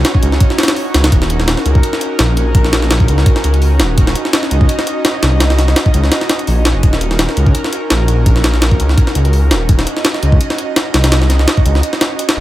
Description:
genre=drum and bass, jungle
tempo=168 BPM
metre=4/4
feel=swing 54% on 16ths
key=Eb dorian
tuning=A4 = 438 Hz
part: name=airy breathy pad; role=sustained chords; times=0.0-12.4 s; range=Db4 to Eb5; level=-19 LUFS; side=right 1 dB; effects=chorus, vintage 12-bit sampler grit
part: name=detuned saw bass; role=bass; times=0.0-12.4 s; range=Eb1 to Db2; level=-12 LUFS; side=equal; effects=none
part: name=jungle sampler-style drum kit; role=drums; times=0.0-12.4 s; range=hi-hat, kick drum, snare drum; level=-13 LUFS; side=equal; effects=none
room=little or no reverb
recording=none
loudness=-10 LUFS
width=side -15 dB against mid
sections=0.0-12.4 A section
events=break 11.8-12.4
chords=0.0 Ebm7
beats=0.05 0.41 0.76 | 1.12 1.48 1.83 2.19 | 2.55 2.91 3.26 3.62 | 3.98 4.33 4.69 5.05 | 5.41 5.76 6.12 6.48 | 6.83 7.19 7.55 7.91 | 8.26 8.62 8.98 9.34 | 9.69 10.05 10.41 10.76 | 11.12 11.48 11.84 12.19

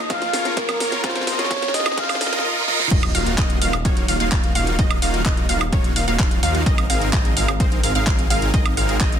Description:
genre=EDM, festival progressive house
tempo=128 BPM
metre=4/4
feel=straight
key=unclear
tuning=A4 = 439 Hz
part: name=breathy flute-like synth lead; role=melody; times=0.0-2.4 s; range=Bb4 to F5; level=-25 LUFS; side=right 1 dB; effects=analog chorus, cassette tape, dub echo
part: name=clear grand piano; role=accompaniment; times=0.0-2.9 s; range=Db3 to F4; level=-33 LUFS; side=left 6 dB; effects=sidechain pumping, dub echo
part: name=riser, reverse cymbal and sub drop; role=sound effects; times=0.0-4.8 s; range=none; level=-26 LUFS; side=right 2 dB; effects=none
part: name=dense compressed supersaw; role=riff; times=0.1-9.2 s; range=Bb3 to F5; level=-24 LUFS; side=equal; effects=sidechain pumping, dub echo
part: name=electronic kick drum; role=drums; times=0.1-9.1 s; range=none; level=-20 LUFS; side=equal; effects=overdrive
part: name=pop drum kit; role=drums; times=0.1-9.2 s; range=crash cymbal, handclaps, hi-hat, snare drum, woodblock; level=-25 LUFS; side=right 2 dB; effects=none
part: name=wide unison pluck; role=arpeggios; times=2.9-9.2 s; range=C5 to F5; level=-26 LUFS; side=equal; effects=sidechain pumping, dub echo
part: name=wide detuned saw bass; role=bass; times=2.9-9.2 s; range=Eb1 to Eb2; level=-24 LUFS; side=equal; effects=chorus, sidechain pumping
room=light reverb, digital ambience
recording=dense, heavily limited modern master, high-pass filter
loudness=-17 LUFS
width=side -8 dB against mid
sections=0.0-2.9 A section; 2.9-9.2 B section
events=build-up 0.0-2.9; drum fill 0.0-2.4, 2.7; riser 0.0-2.4; filter sweep 0.0-2.9; reverse cymbal 2.0-2.9; drop 2.9-9.2; impact 2.9-4.8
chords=0.0 Bbm; 2.9 Ebmadd9; 6.7 Abadd9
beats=0.10 0.57 | 1.04 1.51 1.98 2.44 | 2.91 3.38 3.85 4.32 | 4.79 5.26 5.72 6.19 | 6.66 7.13 7.60 8.07 | 8.54 9.01

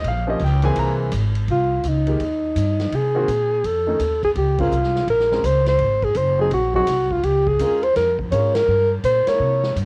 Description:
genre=jazz, small-group swing and bop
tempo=167 BPM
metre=4/4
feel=swing 64% on 8ths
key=F minor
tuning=A4 = 440 Hz
part: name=warm baby grand piano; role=accompaniment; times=0.0-9.7 s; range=Eb3 to Bb5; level=-27 LUFS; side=equal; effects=cassette tape, plate reverb
part: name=upright bass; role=bass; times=0.0-9.9 s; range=Gb1 to C3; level=-25 LUFS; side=equal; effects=none
part: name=swinging big-band drum kit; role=drums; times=0.0-9.9 s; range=hi-hat, kick drum, ride cymbal, snare drum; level=-35 LUFS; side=equal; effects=none
part: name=dark alto saxophone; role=melody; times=1.5-9.8 s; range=Eb4 to Db5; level=-21 LUFS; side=equal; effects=cassette tape
room=light reverb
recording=home recording on cassette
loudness=-19 LUFS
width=mono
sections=0.0-1.5 A section; 1.5-9.9 B section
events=band accent 4.5, 8.5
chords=0.0 Gm7b5; 0.8 Caug7; 1.5 F7sus2; 2.9 Cm7b5; 3.6 Faug7; 4.4 Bbm9; 5.8 Ab7; 7.2 Db6; 8.7 Gdim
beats=| 0.04 0.40 0.76 1.12 | 1.48 1.84 2.20 2.56 | 2.92 3.28 3.64 4.00 | 4.36 4.72 5.08 5.44 | 5.80 6.16 6.52 6.88 | 7.25 7.61 7.96 8.32 | 8.69 9.05 9.41 9.77

